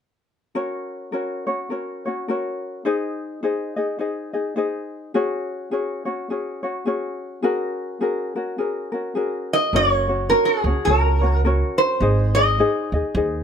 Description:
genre	Hawaiian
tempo	105 BPM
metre	4/4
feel	swing 60% on 8ths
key	F# major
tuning	A4 = 439 Hz
part	ukulele	accompaniment	0.5-13.4 s	C#4 to D#5	-23 LUFS	left 2 dB	none
part	metal-body resonator slide guitar	melody	9.5-12.9 s	G#4 to D#5	-19 LUFS	right 1 dB	plate reverb
part	upright bass	bass	9.7-13.4 s	F#1 to D#2	-20 LUFS	right 1 dB	none
room	moderate small room reverb, RT60 0.5 s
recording	none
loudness	-20 LUFS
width	side -7 dB against mid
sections	0.5-9.7 A section; 9.7-13.4 B section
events	none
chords	0.5 F#; 2.8 G#; 5.1 C#sus4; 7.4 F#add9; 9.7 F#; 12.0 G#

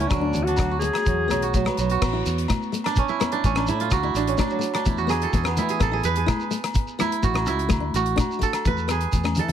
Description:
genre	highlife guitar band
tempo	126 BPM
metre	4/4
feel	straight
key	A major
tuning	A4 = 440 Hz
part	breathy alto saxophone	melody	0.0-1.7 s	D4 to G#4	-25 LUFS	left 3 dB	plate reverb
part	kora	arpeggios	0.0-9.5 s	F#3 to B4	-25 LUFS	right 8 dB	plate reverb, tape echo
part	fingered electric bass	bass	0.0-9.5 s	A1 to E3	-26 LUFS	equal	none
part	damped 70s drum kit	drums	0.0-9.5 s	crash cymbal, hi-hat, kick drum, rim click	-26 LUFS	left 1 dB	none
part	fingerpicked steel-string acoustic guitar	accompaniment	0.1-9.4 s	G#3 to E4	-30 LUFS	left 7 dB	plate reverb
part	agogo bells	percussion	0.1-9.4 s	none	-33 LUFS	left 9 dB	none
part	congas	percussion	0.1-9.5 s	none	-31 LUFS	left 4 dB	none
part	shekere	percussion	0.1-9.5 s	none	-31 LUFS	right 2 dB	none
room	light reverb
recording	none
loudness	-20 LUFS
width	side -9 dB against mid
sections	0.0-2.0 A section; 2.0-9.5 B section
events	kora solo 2.0-9.5; drum fill 9.1-9.5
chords	0.1 D; 1.1 Eadd9; 2.0 Aadd9; 3.9 D5; 4.9 E5; 5.8 Aadd9; 7.7 D; 8.7 E

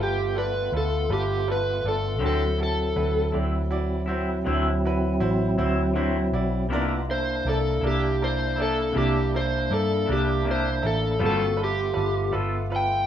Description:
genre	slow blues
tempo	53 BPM (dotted quarters)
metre	12/8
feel	straight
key	unclear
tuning	A4 = 440 Hz
part	overdriven slide guitar	melody	0.0-13.1 s	G4 to G5	-26 LUFS	equal	plate reverb, digital delay
part	bright upright piano	accompaniment	0.0-13.0 s	E4 to E5	-33 LUFS	right 4 dB	plate reverb
part	tonewheel organ	sustained chords	0.0-13.1 s	F#3 to F#4	-29 LUFS	equal	slow rotary speaker, plate reverb
part	vintage muted fingered electric bass	bass	0.0-13.1 s	G1 to G2	-27 LUFS	right 1 dB	none
part	clean electric guitar	accompaniment	2.2-12.6 s	C3 to A4	-29 LUFS	left 4 dB	harmonic tremolo, plate reverb
room	wet studio reverb, RT60 0.5 s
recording	rough home demo mix, small room ambience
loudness	-22 LUFS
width	side -10 dB against mid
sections	0.0-13.1 A section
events	electric slide guitar solo 0.0-13.1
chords	0.0 G9; 2.2 D9; 6.7 C9; 11.2 G9

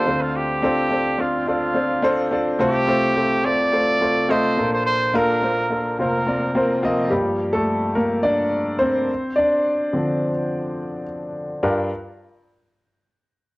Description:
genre	pop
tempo	106 BPM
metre	4/4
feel	straight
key	G minor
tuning	A4 = 440 Hz
part	clear trumpet	melody	0.0-6.8 s	F4 to D5	-22 LUFS	right 1 dB	cassette tape
part	clear grand piano	accompaniment	0.0-11.9 s	F1 to Eb5	-20 LUFS	equal	cassette tape
room	moderate spring reverb, RT60 1.2 s, small room ambience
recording	home recording on cassette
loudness	-18 LUFS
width	side -22 dB against mid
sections	0.0-7.1 A section; 7.1-11.6 B section; 11.6-13.6 C section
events	grand piano solo 7.1-11.6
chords	0.1 Dm7; 2.6 F/C; 4.6 Bbmaj7; 6.0 Fsus4; 7.1 Gm7; 9.1 Dm7; 11.6 Gm7

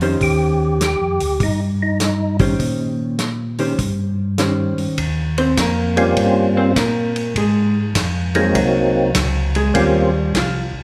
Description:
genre	soul jazz organ trio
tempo	101 BPM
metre	4/4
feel	swing 67% on 8ths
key	Eb mixolydian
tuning	A4 = 441 Hz
part	vintage hollow-body jazz guitar	accompaniment	0.0-10.6 s	Eb3 to C5	-23 LUFS	equal	none
part	mellow tonewheel organ	bass	0.0-10.8 s	C2 to Bb2	-23 LUFS	equal	chorus vibrato, slow rotary speaker
part	warm soul drum kit	drums	0.0-10.5 s	hi-hat, kick drum, ride cymbal, snare drum	-25 LUFS	equal	none
part	percussive tonewheel organ	melody	0.2-2.4, 6.0-10.1 s	Gb3 to G4	-21 LUFS	equal	slow rotary speaker, chorus vibrato
room	moderate scoring stage reverb, RT60 2.0 s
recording	recorded in a church or concert hall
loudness	-18 LUFS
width	mono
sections	0.0-5.0 A section; 5.0-10.8 B section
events	hollow-body jazz guitar solo 5.0-10.8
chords	0.2 Eb13; 7.4 Ab13; 9.7 Eb13

